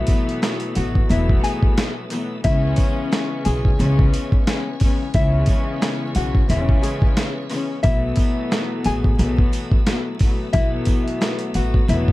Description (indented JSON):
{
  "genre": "hip hop, boom-bap hip-hop",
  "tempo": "89 BPM",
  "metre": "4/4",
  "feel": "swing 58% on 16ths",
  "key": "unclear",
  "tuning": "A4 = 438 Hz",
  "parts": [
    { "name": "nylon-string guitar", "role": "melody", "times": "0.0-12.1 s", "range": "E4 to G#5", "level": "-27 LUFS", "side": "left 2 dB", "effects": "high-pass filter, low-pass filter, digital delay" },
    { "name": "warm studio string section", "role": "accompaniment", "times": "0.0-12.1 s", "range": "B2 to C#4", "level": "-25 LUFS", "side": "left 3 dB", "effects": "cassette tape, high-pass filter, low-pass filter" },
    { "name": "tonewheel organ", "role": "sustained chords", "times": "0.0-12.1 s", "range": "A3 to E5", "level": "-36 LUFS", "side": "equal", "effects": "overdrive, chorus vibrato, slow rotary speaker, high-pass filter, low-pass filter" },
    { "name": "dusty soul sampler-style drum kit", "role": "drums", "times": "0.1-12.1 s", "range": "hi-hat, kick drum, snare drum", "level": "-19 LUFS", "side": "equal", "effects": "none" },
    { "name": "sleigh bells", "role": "percussion", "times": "0.1-12.1 s", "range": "none", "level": "-41 LUFS", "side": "right 6 dB", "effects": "none" },
    { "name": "upright bass", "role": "bass", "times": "0.8-12.1 s", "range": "E1 to C#2", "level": "-21 LUFS", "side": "equal", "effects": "none" }
  ],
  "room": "little or no reverb",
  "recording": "dark, warm production, vinyl crackle",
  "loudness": "-17 LUFS",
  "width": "side -18 dB against mid",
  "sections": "0.0-12.1 A section",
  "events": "none",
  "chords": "0.0 B7sus4; 2.4 C#m7; 7.8 B7sus4"
}